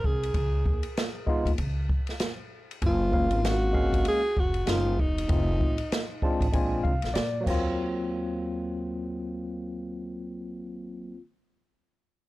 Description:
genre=hip hop, jazz-hop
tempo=97 BPM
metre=4/4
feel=swing 60% on 16ths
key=Eb dorian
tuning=A4 = 440 Hz
part: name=breathy alto saxophone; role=melody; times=0.0-6.2 s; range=Eb4 to Ab4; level=-30 LUFS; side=equal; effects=analog delay
part: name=upright bass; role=bass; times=0.0-11.2 s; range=Fb1 to Bb2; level=-30 LUFS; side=equal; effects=transformer saturation
part: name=open jazz drum kit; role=drums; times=0.0-7.6 s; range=crash cymbal, hi-hat, kick drum, ride cymbal, snare drum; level=-28 LUFS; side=equal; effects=none
part: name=barky tine electric piano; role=accompaniment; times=1.3-11.2 s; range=Gb3 to A5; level=-30 LUFS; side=left 1 dB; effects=medium stereo tremolo
room=small room ambience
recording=dry, gritty hardware recording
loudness=-25 LUFS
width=side -18 dB against mid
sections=0.0-7.8 A section; 7.8-10.2 B section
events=tine electric piano fill 5.9-7.8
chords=0.3 Db7; 2.8 Gbmaj7; 5.3 F7; 6.5 Bb7; 7.5 Ebm69

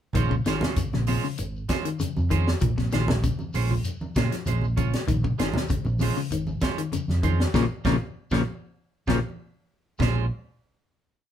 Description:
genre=afrobeat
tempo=97 BPM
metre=4/4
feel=straight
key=Bb minor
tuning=A4 = 441 Hz
part: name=clean electric guitar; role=arpeggios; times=0.1-10.2 s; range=Bb2 to F3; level=-29 LUFS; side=left 8 dB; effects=none
part: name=tight funk drum kit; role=drums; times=0.1-10.2 s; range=hi-hat, kick drum, snare drum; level=-29 LUFS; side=equal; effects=none
part: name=congas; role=percussion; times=0.1-10.1 s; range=none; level=-32 LUFS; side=right 2 dB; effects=none
part: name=shekere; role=percussion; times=0.1-10.1 s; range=none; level=-37 LUFS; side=left 2 dB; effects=none
part: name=clean electric guitar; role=stabs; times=0.2-10.3 s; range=Ab3 to C5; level=-31 LUFS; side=right 8 dB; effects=none
part: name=fingered electric bass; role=bass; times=0.2-10.3 s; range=Ab1 to Bb2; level=-26 LUFS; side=right 1 dB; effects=none
room=light reverb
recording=band playing live in one room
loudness=-23 LUFS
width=side -10 dB against mid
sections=0.1-10.0 groove; 10.0-11.3 final chord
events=band accent 7.5-10.0; drum fill 9.4-10.0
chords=0.1 Bbm9

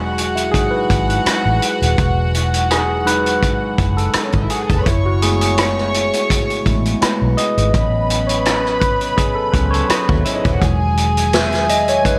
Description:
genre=lush 1970s-style soul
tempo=83 BPM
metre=4/4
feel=swing 54% on 16ths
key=E major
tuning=A4 = 440 Hz
part: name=warm studio string section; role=second line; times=0.0-12.2 s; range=C#4 to C#6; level=-24 LUFS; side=equal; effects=none
part: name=overdriven tine electric piano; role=accompaniment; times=0.0-12.2 s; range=D#3 to E5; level=-22 LUFS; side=equal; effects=phaser
part: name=vintage muted fingered electric bass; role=bass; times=0.0-12.0 s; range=D#1 to D#2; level=-22 LUFS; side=equal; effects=none
part: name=vintage drum kit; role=drums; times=0.2-12.2 s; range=hi-hat, kick drum, rim click, snare drum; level=-22 LUFS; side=equal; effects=none
part: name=electric guitar through a small old amp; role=riff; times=9.7-10.8 s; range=E3 to A4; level=-29 LUFS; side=equal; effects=none
room=light reverb, small room ambience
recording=faint mains hum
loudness=-16 LUFS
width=mono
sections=0.0-12.2 A section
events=tine electric piano solo 0.0-12.2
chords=0.0 Emaj9; 4.9 F#m11; 7.7 A69; 10.6 Emaj9

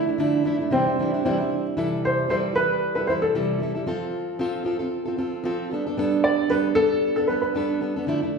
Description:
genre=pop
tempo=114 BPM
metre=4/4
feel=swing 55% on 16ths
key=C major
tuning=A4 = 440 Hz
part: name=dark upright piano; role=melody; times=0.0-7.8 s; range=C4 to D5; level=-22 LUFS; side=equal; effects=none
part: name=fingerpicked plugged-in steel-string acoustic guitar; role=accompaniment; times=0.0-8.4 s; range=C3 to A4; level=-24 LUFS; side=right 1 dB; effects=none
room=wet large studio reverb, RT60 1.2 s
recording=band playing live in one room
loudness=-21 LUFS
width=side -5 dB against mid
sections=0.0-1.8 A section; 1.8-8.4 B section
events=none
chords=0.0 Dmadd9; 0.7 Cadd9; 1.8 C6; 3.9 F; 5.7 Gadd9

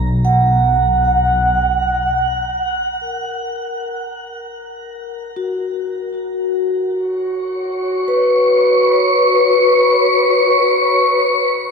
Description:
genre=ambient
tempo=free time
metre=none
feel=none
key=unclear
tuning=A4 = 440 Hz
part: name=vibraphone with soft mallets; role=arpeggios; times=0.0-11.6 s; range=F#4 to F#5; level=-16 LUFS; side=left 1 dB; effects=diffuse ambient delay
part: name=dark symphonic double bass section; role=bass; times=0.0-2.2, 11.6-11.7 s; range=B1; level=-18 LUFS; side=equal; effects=none
part: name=wind-like tuned noise texture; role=texture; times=7.6-11.7 s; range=C#5 to E#6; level=-15 LUFS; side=equal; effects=built-in reverb
room=wet shimmer reverb, RT60 7.1 s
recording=none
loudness=-13 LUFS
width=side -5 dB against mid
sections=0.0-2.2 A section; 2.2-11.6 B section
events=fade-in on vibraphone 2.2-11.6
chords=0.0 F#add11/B; 2.2 F#; 6.9 C#sus4

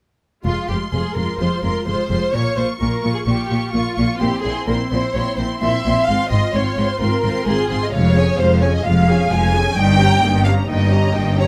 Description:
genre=quick classical-period movement for string orchestra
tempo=129 BPM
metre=4/4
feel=rubato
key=F minor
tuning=A4 = 440 Hz
part: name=warm symphonic violin section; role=melody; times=0.4-11.5 s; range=F5 to Db6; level=-30 LUFS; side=equal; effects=none
part: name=warm symphonic viola section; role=accompaniment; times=0.4-11.5 s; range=Ab3 to Ab4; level=-27 LUFS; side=equal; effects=none
part: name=rich symphonic cello section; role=bass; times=0.4-11.5 s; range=F2 to Bb2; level=-23 LUFS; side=equal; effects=none
part: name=dark symphonic violin section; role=second line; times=0.5-11.5 s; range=F4 to Ab5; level=-24 LUFS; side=equal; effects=none
part: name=warm symphonic double bass section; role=bass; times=0.5-11.5 s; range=F1 to Bb1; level=-23 LUFS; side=equal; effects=none
room=light reverb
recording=close, detailed microphones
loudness=-18 LUFS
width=mono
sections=0.4-11.5 A section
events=none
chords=0.4 Fm; 2.3 Bbm; 4.2 C7/Bb; 6.1 Fm/Ab; 7.9 Db/F; 9.8 Eb7/G

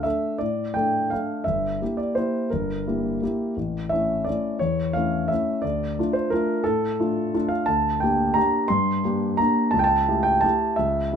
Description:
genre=classical, piano waltz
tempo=173 BPM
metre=3/4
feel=uneven beats, rubato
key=D minor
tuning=A4 = 441 Hz
part: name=warm concert grand piano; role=solo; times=0.0-11.2 s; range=G1 to C6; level=-21 LUFS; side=equal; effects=none
room=light reverb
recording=none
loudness=-21 LUFS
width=side -7 dB against mid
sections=0.0-11.2 A section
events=none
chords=0.0 Dm; 1.5 Edim/G; 3.6 A; 5.6 Dm; 7.7 Gm/D; 9.7 A7/C#

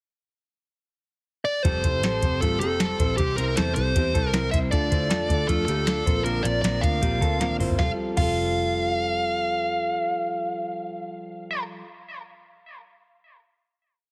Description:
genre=jangly indie pop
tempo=156 BPM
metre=4/4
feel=straight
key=F major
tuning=A4 = 436 Hz
part: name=dark smooth lead guitar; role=melody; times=1.4-11.6 s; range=G4 to F5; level=-29 LUFS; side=equal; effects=overdrive
part: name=fingerpicked plugged-in steel-string acoustic guitar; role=accompaniment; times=1.6-11.9 s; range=Bb2 to C5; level=-33 LUFS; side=equal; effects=none
part: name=vintage muted picked electric bass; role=bass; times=1.6-11.8 s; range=F1 to F2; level=-31 LUFS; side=equal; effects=none
part: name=soft vintage rhythm box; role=drums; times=1.6-8.3 s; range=crash cymbal, hi-hat, kick drum, snare drum, toms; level=-28 LUFS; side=equal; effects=none
part: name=electric guitar through a small old amp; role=arpeggios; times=1.7-8.9 s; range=A3 to D5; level=-34 LUFS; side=equal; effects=none
room=moderate echo chamber reverb, RT60 2.1 s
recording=heavily compressed radio sound, multiband compression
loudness=-24 LUFS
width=mono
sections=0.1-1.6 pickup bar; 1.6-7.8 verse; 7.8-10.9 final chord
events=drum fill 7.4-7.8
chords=0.1 N.C.; 1.6 Fadd9; 3.2 C; 4.7 Dm; 6.1 Bbadd9; 7.8 Fadd9

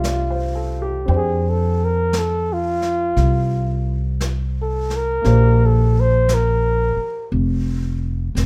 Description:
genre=jazz ballad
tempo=58 BPM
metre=4/4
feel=swing 66% on 8ths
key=F major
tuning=A4 = 436 Hz
part: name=dark flugelhorn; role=melody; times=0.0-7.3 s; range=F4 to C5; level=-23 LUFS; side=equal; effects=none
part: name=warm baby grand piano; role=accompaniment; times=0.0-8.5 s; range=D3 to G5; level=-32 LUFS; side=equal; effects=none
part: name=upright bass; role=bass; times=0.0-8.5 s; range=F1 to F2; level=-21 LUFS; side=equal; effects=none
part: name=jazz brush drum kit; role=drums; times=0.0-8.5 s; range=brushed snare drum, hi-hat, snare drum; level=-34 LUFS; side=equal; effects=none
room=little or no reverb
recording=none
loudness=-19 LUFS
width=mono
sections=0.0-8.5 A section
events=flugelhorn solo 0.0-8.5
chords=0.0 F69; 1.1 F5; 5.2 Bbadd9

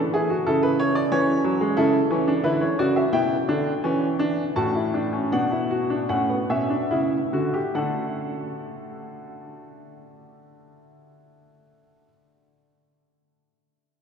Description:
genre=classical, baroque-style 3-part fugue for grand piano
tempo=69-92 BPM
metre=4/4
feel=straight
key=D major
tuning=A4 = 440 Hz
part: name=warm baby grand piano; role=solo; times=0.0-12.1 s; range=A2 to A5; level=-21 LUFS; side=equal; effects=none
room=wet cathedral reverb, RT60 5.2 s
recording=recorded in a church or concert hall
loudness=-20 LUFS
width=side -6 dB against mid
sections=0.0-7.8 A section; 7.8-11.2 B section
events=slowing down 0.5-7.8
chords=0.5 A/C#; 3.1 G/B; 4.6 D/A; 6.1 A7; 7.8 D

